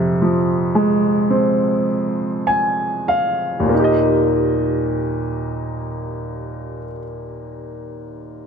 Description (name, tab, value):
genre	pop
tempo	47-57 BPM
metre	4/4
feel	straight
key	Eb major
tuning	A4 = 441 Hz
part	clear baby grand piano	accompaniment	0.0-8.5 s	Eb2 to Ab5	-17 LUFS	equal	none
room	light reverb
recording	none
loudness	-16 LUFS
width	side -6 dB against mid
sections	0.0-3.7 A section; 3.7-8.5 B section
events	slowing down 0.0-3.7; grand piano fill 1.9-3.7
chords	0.0 Fm; 3.7 Eb